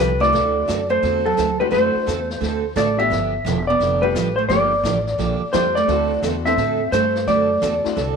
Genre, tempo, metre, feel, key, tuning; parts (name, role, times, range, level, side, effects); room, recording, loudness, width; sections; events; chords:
country, western swing; 173 BPM; 4/4; swing 65% on 8ths; D mixolydian; A4 = 439 Hz
clean lap steel guitar; melody; 0.0-8.2 s; A4 to E5; -19 LUFS; equal
archtop guitar, miked and amplified; second line; 0.0-8.2 s; F#3 to C4; -27 LUFS; right 9 dB
picked steel-string acoustic guitar; accompaniment; 0.0-8.2 s; D3 to A4; -25 LUFS; right 10 dB
upright bass; bass; 0.0-8.2 s; E1 to A2; -26 LUFS; left 2 dB
honky-tonk upright piano; accompaniment; 0.2-8.0 s; G3 to A4; -28 LUFS; left 14 dB
jazz brush drum kit; drums; 0.2-8.2 s; brushed snare drum, hi-hat, snare drum; -32 LUFS; left 9 dB
moderate echo chamber reverb, RT60 1.4 s, small room reverb; 1960s-style stereo with parts hard left and right; -17 LUFS; side -6 dB against mid
0.0-8.2 A section
0.3 D9; 3.1 G9; 4.5 Gm7; 5.9 D9